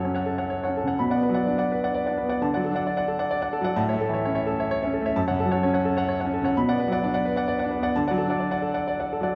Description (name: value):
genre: neoclassical minimalist piano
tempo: 130 BPM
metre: 3/4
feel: rubato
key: unclear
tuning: A4 = 439 Hz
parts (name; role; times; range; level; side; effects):
- clear grand piano; solo; 0.0-9.4 s; F#2 to B5; -25 LUFS; equal; none
room: wet recital hall reverb, RT60 1.4 s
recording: recorded in a church or concert hall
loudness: -25 LUFS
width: mono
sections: 0.0-9.4 A section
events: none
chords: 0.0 F#m; 1.0 Bm; 2.4 D; 3.8 A; 5.2 F#m; 6.5 Bm; 7.9 D